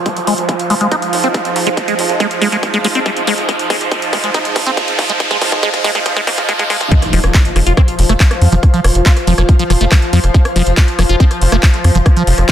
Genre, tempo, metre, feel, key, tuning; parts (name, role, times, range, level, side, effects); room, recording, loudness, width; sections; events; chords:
psychedelic trance; 140 BPM; 4/4; straight; A4 = 440 Hz
bubbling stepped-filter texture; sustained chords; 0.0-12.5 s; F3; -20 LUFS; right 3 dB; chorus, built-in reverb, sidechain pumping
riser, swell and impact; sound effects; 0.0-8.6 s; -21 LUFS; equal
ethereal airy pad; texture; 0.0-12.5 s; Eb4 to F5; -23 LUFS; left 1 dB; ensemble chorus, built-in reverb, sidechain pumping
liquid acid bass; riff; 0.1-12.5 s; E3 to F4; -18 LUFS; moving between left 5 dB and right 4 dB; phaser, auto-pan, sidechain pumping, dub echo
electronic kick drum; drums; 0.1-12.5 s; -11 LUFS; equal; high-pass filter on kick
techno drum kit; drums; 0.1-12.5 s; handclaps, hi-hat, rim click; -20 LUFS; equal; high-pass filter on hats, soft clipping on snare, high-pass filter on snare
tight sequencer bass; bass; 0.3-12.4 s; F1 to Ab2; -14 LUFS; equal; high-pass filter
light reverb, digital ambience; dense, heavily limited modern master, high-pass filter; -11 LUFS; side -10 dB against mid
0.0-6.9 A section; 6.9-12.5 B section
build-up 0.0-6.9; riser 0.0-6.9; filter sweep on acid bass 0.0-6.9; filter sweep 0.0-6.9; drum fill 0.1-6.9; swell 6.1-6.9; drop 6.9-12.5; impact 6.9-8.6
0.1 Ab5; 6.9 F5